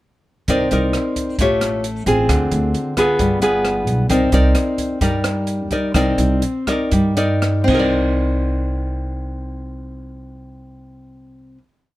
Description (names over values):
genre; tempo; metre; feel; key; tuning
bossa nova; 113-133 BPM; 4/4; straight; C minor; A4 = 440 Hz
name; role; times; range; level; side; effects
nylon-string guitar; accompaniment; 0.5-11.7 s; D3 to D5; -18 LUFS; left 1 dB; none
upright bass; bass; 0.5-11.6 s; G1 to G2; -20 LUFS; right 1 dB; none
open jazz drum kit; drums; 0.5-7.8 s; crash cymbal, hi-hat, kick drum, rim click; -24 LUFS; right 1 dB; none
room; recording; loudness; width
little or no reverb; close, detailed microphones; -16 LUFS; side -16 dB against mid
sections
0.5-7.9 A section; 7.9-12.0 final hit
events
slowing down 4.1-7.9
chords
0.5 Cm9; 1.4 A7alt; 2.3 Dm7b5; 3.2 G7b9; 4.1 Cm9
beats
| 0.48 0.94 1.39 1.84 | 2.29 2.74 3.19 3.65 | 4.10 4.55 5.01 5.47 | 5.94 6.42 6.92 7.42 | 7.95 8.48 9.01 9.55 | 10.08 10.61 11.14 11.67